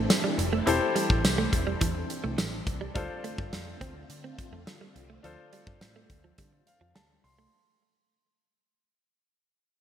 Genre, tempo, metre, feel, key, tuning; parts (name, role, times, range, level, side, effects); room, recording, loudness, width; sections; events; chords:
1980s-style pop; 105 BPM; 4/4; straight; A4 = 440 Hz
clear concert grand piano; accompaniment; 0.0-7.6 s; D4 to C6; -31 LUFS; left 4 dB
phased string machine; sustained chords; 0.0-7.5 s; D3 to A4; -37 LUFS; equal; ensemble chorus, phaser
direct-recorded clean electric guitar; riff; 0.0-7.5 s; E3 to C4; -33 LUFS; right 5 dB; analog chorus, digital delay
vintage muted picked electric bass; bass; 0.0-7.5 s; E1 to D3; -34 LUFS; equal
big rock drum kit; drums; 0.1-7.4 s; hi-hat, kick drum, snare drum, tambourine; -28 LUFS; equal; gated reverb
moderate lush hall reverb, RT60 2.3 s; bright 1980s-style digital production; -25 LUFS; side -9 dB against mid
0.0-7.5 A section
fade-out 0.0-7.5; grand piano fill 6.4-7.5
0.0 C6/E; 3.0 Dm7